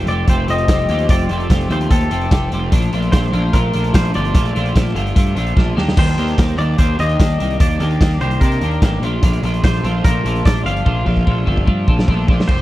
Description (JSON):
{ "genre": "indie rock", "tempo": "148 BPM", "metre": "4/4", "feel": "straight", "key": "unclear", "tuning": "A4 = 439 Hz", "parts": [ { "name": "twangy electric guitar", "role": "melody", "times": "0.0-12.6 s", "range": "A4 to F5", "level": "-23 LUFS", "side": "left 1 dB", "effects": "spring reverb, slapback echo" }, { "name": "twelve-string electric guitar", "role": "riff", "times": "0.0-12.6 s", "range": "Eb3 to G4", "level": "-22 LUFS", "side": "equal", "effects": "double-tracked left and right" }, { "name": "fuzz picked electric bass", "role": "bass", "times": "0.0-12.6 s", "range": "F1 to C3", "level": "-18 LUFS", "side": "equal", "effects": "overdrive" }, { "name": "raw garage drum kit", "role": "drums", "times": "0.1-12.6 s", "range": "crash cymbal, hi-hat, kick drum, snare drum", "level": "-16 LUFS", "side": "equal", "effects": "none" } ], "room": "little or no reverb", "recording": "dry, close 1970s-style studio recording", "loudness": "-14 LUFS", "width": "side -16 dB against mid", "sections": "0.0-12.5 A section", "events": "drum fill 5.6-6.0, 10.9-12.5", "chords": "0.0 Fadd9; 2.7 Bbmaj7; 5.8 Ebmaj7; 9.0 Bbmaj7" }